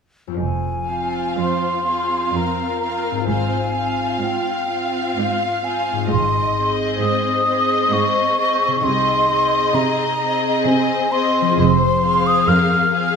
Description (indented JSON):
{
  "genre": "classical, slow romantic movement for symphony orchestra",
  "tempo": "65 BPM",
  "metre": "3/4",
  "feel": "rubato",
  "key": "F minor",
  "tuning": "A4 = 440 Hz",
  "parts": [
    { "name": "concert harp", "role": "arpeggios", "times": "0.3-13.2 s", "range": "F2 to C5", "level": "-26 LUFS", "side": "left 10 dB", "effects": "none" },
    { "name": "mellow hollow concert flute", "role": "second line", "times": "0.4-13.1 s", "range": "F5 to F6", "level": "-20 LUFS", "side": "equal", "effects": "none" },
    { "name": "rich symphonic cello section", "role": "bass", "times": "0.4-13.2 s", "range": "F2 to C3", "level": "-24 LUFS", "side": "right 5 dB", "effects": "none" },
    { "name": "warm symphonic double bass section", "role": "bass", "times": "0.4-12.4 s", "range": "F1 to C2", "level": "-25 LUFS", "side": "right 6 dB", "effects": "none" },
    { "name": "warm symphonic violin section", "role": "melody", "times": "0.9-13.2 s", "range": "Eb5 to F5", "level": "-26 LUFS", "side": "left 3 dB", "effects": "none" },
    { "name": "rich symphonic viola section", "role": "accompaniment", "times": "0.9-13.2 s", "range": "C4 to Ab4", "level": "-25 LUFS", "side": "right 2 dB", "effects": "none" },
    { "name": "warm symphonic violin section", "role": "second line", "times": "1.4-13.2 s", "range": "Ab4 to F5", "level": "-26 LUFS", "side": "left 4 dB", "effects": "none" }
  ],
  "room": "moderate scoring stage reverb, RT60 1.6 s",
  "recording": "none",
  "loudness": "-16 LUFS",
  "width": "side -6 dB against mid",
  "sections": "0.4-13.2 A section",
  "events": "none",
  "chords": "0.4 Fm; 3.3 Fm/Ab; 6.1 Ab; 8.8 Ab/C; 11.6 Fm"
}